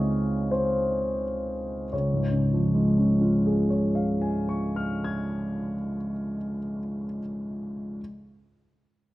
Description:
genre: classical, impressionist solo piano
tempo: 40-50 BPM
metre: 3/4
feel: rubato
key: Db major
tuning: A4 = 441 Hz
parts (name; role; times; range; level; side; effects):
- clear baby grand piano; solo; 0.0-8.0 s; Db2 to Ab6; -24 LUFS; equal; none
room: wet recital hall reverb, RT60 1.7 s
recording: none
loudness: -24 LUFS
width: side -17 dB against mid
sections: 0.0-1.9 A section; 1.9-5.7 B section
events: slowing down 0.0-1.9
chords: 0.0 Dbmaj9; 1.9 Db

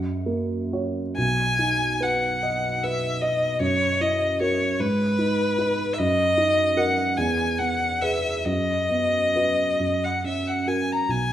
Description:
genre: classical, romantic duo for violin and grand piano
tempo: 42-52 BPM (dotted quarters)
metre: 6/8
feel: rubato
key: B major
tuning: A4 = 441 Hz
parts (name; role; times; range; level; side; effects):
- dark grand piano; accompaniment; 0.0-11.3 s; B1 to D#5; -25 LUFS; right 1 dB; none
- rich violin; melody; 1.2-11.3 s; B4 to A#5; -23 LUFS; left 1 dB; none
room: moderate recital hall reverb, RT60 1.5 s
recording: none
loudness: -21 LUFS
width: side -11 dB against mid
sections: 0.0-1.2 A section; 1.2-11.3 B section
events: none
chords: 0.0 F#; 1.2 B; 3.6 F#7; 4.8 G#m; 6.0 D#m/F#; 7.2 E; 8.5 B/F#; 9.8 F#

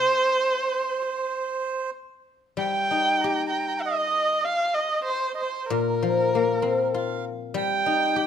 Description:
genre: chinese traditional, Chinese chamber ensemble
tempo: 96 BPM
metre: 4/4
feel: rubato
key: C yu mode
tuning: A4 = 440 Hz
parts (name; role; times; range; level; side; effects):
- dark erhu; melody; 0.0-8.3 s; Bb4 to G5; -25 LUFS; right 1 dB; none
- melodica; second line; 0.0-8.3 s; Bb4 to Bb5; -28 LUFS; right 7 dB; none
- guzheng; accompaniment; 0.0-8.3 s; Bb2 to G4; -25 LUFS; left 5 dB; none
room: light reverb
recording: close, detailed microphones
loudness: -22 LUFS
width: side -8 dB against mid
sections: 0.0-2.6 A section; 2.6-8.3 B section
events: none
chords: none

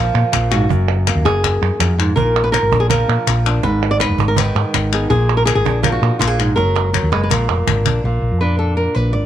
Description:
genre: flamenco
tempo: 163 BPM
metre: 4/4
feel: straight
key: Bb phrygian dominant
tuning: A4 = 440 Hz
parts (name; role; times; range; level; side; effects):
- flamenco guitar; melody; 0.0-9.3 s; Gb2 to D5; -18 LUFS; equal; none
- hollow-body short-scale fingered electric bass; bass; 0.0-9.3 s; F1 to Bb2; -17 LUFS; equal; none
- palmas hand claps; percussion; 0.1-8.0 s; none; -21 LUFS; left 1 dB; none
- cajon; percussion; 0.3-7.9 s; none; -23 LUFS; right 8 dB; none
room: small room ambience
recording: 1960s-style stereo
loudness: -14 LUFS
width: side -11 dB against mid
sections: 0.0-8.0 A section; 8.0-9.3 B section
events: drum fill 6.6-8.0; nylon-string guitar solo 8.0-9.3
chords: 0.0 Bb5; 0.7 Gb; 2.2 Bb; 3.6 Abm; 5.1 Bb; 6.6 Gb; 7.3 Bb

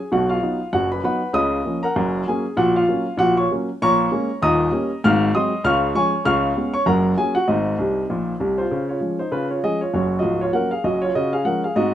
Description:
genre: jazz, stride piano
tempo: 196 BPM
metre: 4/4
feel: swing 59% on 8ths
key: F# major, Db major from 3.8 s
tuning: A4 = 440 Hz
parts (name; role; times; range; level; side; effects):
- warm grand piano; solo; 0.0-11.9 s; Db1 to F6; -18 LUFS; equal; none
room: moderate small room reverb, RT60 0.6 s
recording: minimal, uncompressed stereo recording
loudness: -18 LUFS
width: side -11 dB against mid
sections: 0.0-8.7 A section; 8.7-11.9 B section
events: grand piano fill 7.8-8.7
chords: 0.1 B; 1.3 C#13; 2.0 F#; 2.6 F#/A#; 3.8 Bbm7; 4.4 Eb7; 5.0 Ab7; 5.6 Db; 6.3 Db7; 6.9 Gb; 7.5 Ab; 8.7 Db

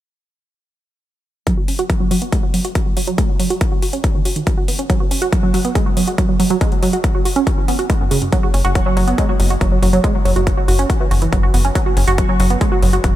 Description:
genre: uplifting trance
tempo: 140 BPM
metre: 4/4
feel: straight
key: unclear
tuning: A4 = 440 Hz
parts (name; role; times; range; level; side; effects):
- wide unison pluck; arpeggios; 1.5-13.1 s; F#2 to F#4; -18 LUFS; right 2 dB; sidechain pumping, ping-pong delay
- electronic hi-hat; drums; 1.5-13.1 s; none; -28 LUFS; left 1 dB; sidechain pumping on hats
- electronic kick drum; drums; 1.5-13.1 s; none; -17 LUFS; equal; none
- tight sequencer bass; bass; 8.5-13.2 s; F#1; -17 LUFS; equal; sidechain pumping
room: light reverb, digital ambience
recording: none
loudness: -14 LUFS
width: side -13 dB against mid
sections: 1.5-13.2 A section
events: filter sweep on synth pluck 1.5-13.2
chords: 1.5 N.C.; 4.9 F#5

